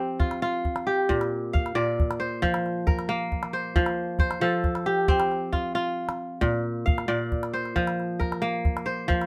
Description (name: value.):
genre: west african traditional, West African string and xylophone music.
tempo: 90 BPM (dotted quarters).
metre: 12/8.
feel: straight.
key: unclear.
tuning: A4 = 440 Hz.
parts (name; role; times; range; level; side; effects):
kora; arpeggios; 0.0-9.3 s; Bb2 to F5; -28 LUFS; equal; none.
calabash; percussion; 0.2-9.3 s; none; -28 LUFS; equal; none.
room: light reverb.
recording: none.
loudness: -26 LUFS.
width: mono.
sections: 0.0-9.3 A section.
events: none.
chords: 0.0 F; 1.1 Bb; 3.8 F; 6.4 Bb.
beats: 0.42 | 1.09 1.76 2.42 3.09 | 3.76 4.42 5.09 5.76 | 6.42 7.09 7.76 8.42 | 9.09.